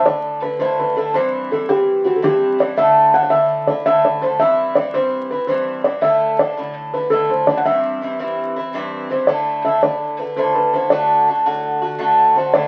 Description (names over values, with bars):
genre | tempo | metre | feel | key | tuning
celtic folk, Celtic slip jig | 111 BPM (dotted quarters) | 9/8 | straight | D mixolydian | A4 = 440 Hz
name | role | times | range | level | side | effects
felt-muted upright piano | melody | 0.0-12.7 s | F#4 to F#5 | -19 LUFS | equal | none
Irish bouzouki | accompaniment | 0.0-12.7 s | G2 to F#4 | -21 LUFS | equal | none
room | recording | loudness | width
moderate studio reverb, RT60 0.6 s | very old 78 rpm record, vinyl crackle | -17 LUFS | mono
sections
0.0-12.5 A section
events
none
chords
0.0 Dsus2; 1.1 C; 2.8 Dsus2; 4.4 C; 6.0 Dsus2; 7.7 C; 9.3 Dsus2; 10.9 D